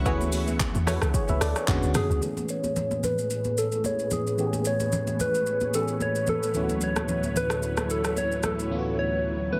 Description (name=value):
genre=amapiano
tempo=111 BPM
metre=4/4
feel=swing 55% on 16ths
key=A major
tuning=A4 = 440 Hz
part: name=FM electric piano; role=accompaniment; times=0.0-9.6 s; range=D2 to E5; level=-34 LUFS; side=equal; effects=chorus, low-pass filter
part: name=string machine, cellos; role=sustained chords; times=0.0-9.6 s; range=D2 to C#6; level=-34 LUFS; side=equal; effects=ensemble chorus, low-pass filter
part: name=deep log drum bass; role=bass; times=0.0-2.2 s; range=C#2 to E2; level=-29 LUFS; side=equal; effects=none
part: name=punchy chord stab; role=stabs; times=0.1-1.0 s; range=E4 to C#5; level=-36 LUFS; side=equal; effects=chorus, tape echo
part: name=deep house drum kit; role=drums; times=0.1-8.7 s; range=handclaps, hi-hat, kick drum, rim click, shaker, toms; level=-33 LUFS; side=equal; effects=overdrive
part: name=congas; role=percussion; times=0.2-8.6 s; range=none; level=-37 LUFS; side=equal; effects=none
part: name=soft struck synth lead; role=melody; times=2.0-9.6 s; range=G#4 to C#5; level=-30 LUFS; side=equal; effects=chorus, tremolo, low-pass filter, tape echo
room=light reverb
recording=heavily compressed radio sound, multiband compression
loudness=-26 LUFS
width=mono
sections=0.0-2.2 A section; 2.2-9.6 B section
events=drop 0.0-2.2; filter sweep 2.2-9.6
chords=0.0 Dmaj13; 1.7 E13; 2.2 Amaj9; 6.5 Dmaj13